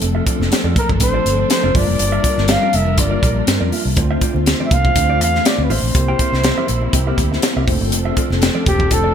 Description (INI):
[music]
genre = polished 1980s jazz-funk pop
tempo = 122 BPM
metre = 4/4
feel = swing 54% on 16ths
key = unclear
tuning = A4 = 440 Hz
[part]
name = mellow tine electric piano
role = accompaniment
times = 0.0-9.1 s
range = F3 to C5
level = -23 LUFS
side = left 3 dB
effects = medium stereo tremolo, analog chorus
[part]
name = dark studio string section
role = sustained chords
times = 0.0-9.1 s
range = C3 to Bb4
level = -27 LUFS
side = right 1 dB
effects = none
[part]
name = mellow electric guitar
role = riff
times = 0.0-9.1 s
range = F4 to G5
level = -28 LUFS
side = right 5 dB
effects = wide subtle chorus
[part]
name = vintage muted fingered electric bass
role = bass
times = 0.0-9.1 s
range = E1 to G2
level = -19 LUFS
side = right 1 dB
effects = none
[part]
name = crisp fusion drum kit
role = drums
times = 0.0-9.0 s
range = hi-hat, kick drum, snare drum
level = -17 LUFS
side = equal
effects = gated reverb
[part]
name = congas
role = percussion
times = 0.0-9.0 s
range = none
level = -31 LUFS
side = right 4 dB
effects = none
[part]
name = breathy flugelhorn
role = melody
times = 0.8-9.1 s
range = G4 to F5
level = -20 LUFS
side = equal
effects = none
[sound]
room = light reverb, small room ambience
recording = bright 1980s-style digital production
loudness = -14 LUFS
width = side -8 dB against mid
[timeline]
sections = 0.0-9.1 A section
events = none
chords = 0.0 F6; 1.8 Gm7; 4.0 Dm7; 5.9 C7; 7.7 F6